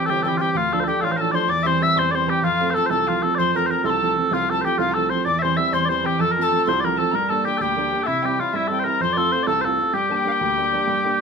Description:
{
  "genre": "celtic folk",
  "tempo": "128 BPM (dotted quarters)",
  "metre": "12/8",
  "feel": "straight",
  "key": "unclear",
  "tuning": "A4 = 440 Hz",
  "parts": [
    { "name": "mellow small bagpipes", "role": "melody", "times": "0.0-11.2 s", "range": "E4 to E5", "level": "-21 LUFS", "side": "left 1 dB", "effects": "none" },
    { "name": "tin whistle", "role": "second line", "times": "0.0-11.2 s", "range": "E5 to E6", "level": "-25 LUFS", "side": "left 8 dB", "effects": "none" },
    { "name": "clear upright piano", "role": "accompaniment", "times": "0.0-11.2 s", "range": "G1 to F4", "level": "-23 LUFS", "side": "right 4 dB", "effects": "none" }
  ],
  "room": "moderate studio reverb, RT60 0.5 s",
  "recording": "minimal, uncompressed stereo recording",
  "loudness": "-18 LUFS",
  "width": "side -5 dB against mid",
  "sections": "0.0-11.2 A section",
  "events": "none",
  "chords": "0.0 C; 0.6 Dm; 1.5 C/E; 2.4 F; 5.3 C/E; 6.2 F; 7.1 Gm; 8.1 C; 9.0 F; 9.9 Gm"
}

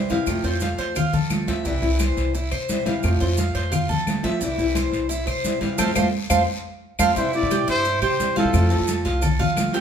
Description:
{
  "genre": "latin, Cuban son and guajira",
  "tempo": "174 BPM",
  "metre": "4/4",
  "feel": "straight",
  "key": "C major",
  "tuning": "A4 = 440 Hz",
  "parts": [
    { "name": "nylon-string guitar", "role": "accompaniment", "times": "0.0-9.8 s", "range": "C3 to F4", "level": "-26 LUFS", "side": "left 3 dB", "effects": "none" },
    { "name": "Cuban tres", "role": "arpeggios", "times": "0.0-9.8 s", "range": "E4 to F5", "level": "-25 LUFS", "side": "right 3 dB", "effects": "none" },
    { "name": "upright bass", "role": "bass", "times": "0.0-9.8 s", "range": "C2 to F3", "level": "-25 LUFS", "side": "equal", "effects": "none" },
    { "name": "congas", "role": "percussion", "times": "0.1-9.8 s", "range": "none", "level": "-26 LUFS", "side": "equal", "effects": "none" },
    { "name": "guiro", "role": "percussion", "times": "0.1-9.8 s", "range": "none", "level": "-36 LUFS", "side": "left 4 dB", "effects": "none" },
    { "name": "maracas", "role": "percussion", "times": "0.1-9.8 s", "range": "none", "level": "-36 LUFS", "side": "right 4 dB", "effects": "none" },
    { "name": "claves", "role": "percussion", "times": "0.3-9.7 s", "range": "none", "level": "-33 LUFS", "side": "left 3 dB", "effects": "none" },
    { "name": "breathy trumpet", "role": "melody", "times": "7.2-9.0 s", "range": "A4 to D5", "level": "-24 LUFS", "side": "equal", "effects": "none" }
  ],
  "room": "wet large studio reverb, RT60 1.0 s",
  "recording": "band playing live in one room",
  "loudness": "-19 LUFS",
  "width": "side -8 dB against mid",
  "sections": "0.0-7.2 A section; 7.2-9.8 B section",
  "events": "band accent 5.8-7.2",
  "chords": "0.3 F; 1.7 C; 3.0 F; 4.4 C; 5.8 F; 7.2 C; 8.5 F"
}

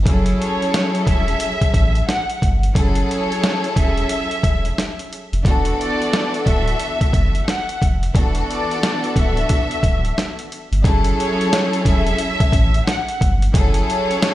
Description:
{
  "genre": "hip hop, boom-bap hip-hop",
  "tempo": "89 BPM",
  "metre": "4/4",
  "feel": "swing 62% on 16ths",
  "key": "F# minor",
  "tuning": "A4 = 440 Hz",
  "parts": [
    { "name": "soft dub sub bass", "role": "bass", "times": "0.0-13.8 s", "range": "D1 to A1", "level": "-20 LUFS", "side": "equal", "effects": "none" },
    { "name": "warm studio string section", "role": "accompaniment", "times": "0.1-14.3 s", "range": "E3 to A4", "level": "-22 LUFS", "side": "left 1 dB", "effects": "none" },
    { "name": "dusty soul sampler-style drum kit", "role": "drums", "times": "0.1-14.3 s", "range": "hi-hat, kick drum, snare drum", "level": "-18 LUFS", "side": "equal", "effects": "none" },
    { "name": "warm studio violin section", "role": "melody", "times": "0.4-14.3 s", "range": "C#5 to F#5", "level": "-24 LUFS", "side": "equal", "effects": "tape echo" }
  ],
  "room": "little or no reverb",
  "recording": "played on a big sound system in a bare room, stone room reverb",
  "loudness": "-16 LUFS",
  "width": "side -15 dB against mid",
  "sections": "0.0-10.8 A section; 10.8-14.3 B section",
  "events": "none",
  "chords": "0.1 F#m7; 5.5 E7sus4; 10.8 F#m7"
}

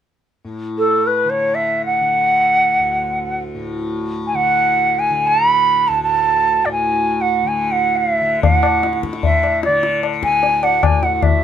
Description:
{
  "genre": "indian classical, Hindustani",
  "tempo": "free time",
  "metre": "none",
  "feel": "none",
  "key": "D raga yaman",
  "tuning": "A4 = 440 Hz",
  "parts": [
    { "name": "tanpura", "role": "drone", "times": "0.4-11.4 s", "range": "D2 to D3", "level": "-24 LUFS", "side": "left 2 dB", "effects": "none" },
    { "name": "bansuri", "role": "melody", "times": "0.8-11.4 s", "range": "A4 to B5", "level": "-15 LUFS", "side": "right 1 dB", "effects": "none" },
    { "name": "tabla", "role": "percussion", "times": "8.4-11.4 s", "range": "none", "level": "-17 LUFS", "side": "left 5 dB", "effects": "none" }
  ],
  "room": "light reverb",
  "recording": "none",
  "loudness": "-14 LUFS",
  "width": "side -9 dB against mid",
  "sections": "0.5-8.4 A section; 8.4-11.4 B section",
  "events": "none",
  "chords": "none"
}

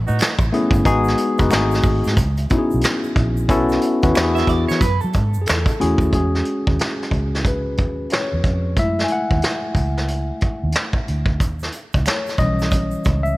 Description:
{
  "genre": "R&B, neo-soul",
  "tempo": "91 BPM",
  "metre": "4/4",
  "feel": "swing 62% on 16ths",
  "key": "F# dorian",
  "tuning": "A4 = 440 Hz",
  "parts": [
    { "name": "vintage muted fingered electric bass", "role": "bass", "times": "0.0-13.3 s", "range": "F#1 to F#3", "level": "-21 LUFS", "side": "equal", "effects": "none" },
    { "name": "egg shaker and finger snaps", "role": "percussion", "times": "0.1-6.1, 11.4-13.4 s", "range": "none", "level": "-37 LUFS", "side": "right 6 dB", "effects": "none" },
    { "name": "vintage brush drum kit", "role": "drums", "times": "0.2-13.2 s", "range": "hi-hat, kick drum, snare drum", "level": "-20 LUFS", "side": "equal", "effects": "none" },
    { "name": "tine electric piano", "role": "accompaniment", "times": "0.5-13.4 s", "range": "E3 to G#5", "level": "-20 LUFS", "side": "left 2 dB", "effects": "overdrive" },
    { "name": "electric guitar at the edge of break-up", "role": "second line", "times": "4.4-6.0 s", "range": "A4 to E5", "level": "-26 LUFS", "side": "right 8 dB", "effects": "phaser" }
  ],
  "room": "small room ambience",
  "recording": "none",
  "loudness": "-16 LUFS",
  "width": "side -18 dB against mid",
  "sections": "0.0-6.1 A section; 6.1-13.4 B section",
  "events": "tine electric piano solo 6.1-13.4",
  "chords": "0.0 Amaj9; 0.9 G#m7; 1.5 G#7b9; 2.2 C#m9; 3.5 B7sus4; 4.1 E7; 4.8 F#m9; 6.1 E6; 8.8 F#m9; 11.4 D#7b9"
}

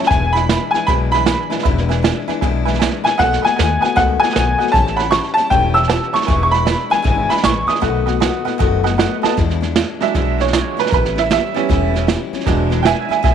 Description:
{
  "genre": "rockabilly",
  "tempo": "155 BPM",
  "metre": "4/4",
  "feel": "swing 64% on 8ths",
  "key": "E mixolydian",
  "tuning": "A4 = 439 Hz",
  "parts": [
    { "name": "bright upright piano", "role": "melody", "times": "0.0-8.9 s", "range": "F#5 to E6", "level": "-16 LUFS", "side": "equal", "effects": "none" },
    { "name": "picked steel-string acoustic guitar", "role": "accompaniment", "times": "0.0-13.3 s", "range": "E2 to F#4", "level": "-23 LUFS", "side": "left 13 dB", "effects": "none" },
    { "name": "tack piano", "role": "accompaniment", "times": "0.0-13.3 s", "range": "F#3 to B5", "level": "-21 LUFS", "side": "right 11 dB", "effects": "none" },
    { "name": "vintage brush drum kit", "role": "drums", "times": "0.0-13.3 s", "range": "hi-hat, kick drum, snare drum", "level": "-20 LUFS", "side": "right 3 dB", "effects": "none" },
    { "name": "upright bass", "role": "bass", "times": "0.1-13.3 s", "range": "E1 to E2", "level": "-20 LUFS", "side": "left 2 dB", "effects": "none" }
  ],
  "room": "moderate spring reverb, RT60 2.0 s, small room ambience",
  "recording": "1960s-style stereo with parts hard left and right",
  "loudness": "-14 LUFS",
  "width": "side -8 dB against mid",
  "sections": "0.0-9.4 A section; 9.4-13.3 B section",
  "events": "drum fill 3.0, 9.2; honky-tonk piano fill 8.6-9.4; honky-tonk piano solo 9.4-13.3",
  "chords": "0.1 E7; 3.2 B7; 4.7 A7; 6.3 E7; 7.8 B7; 9.4 E7; 10.9 A7; 12.5 E7"
}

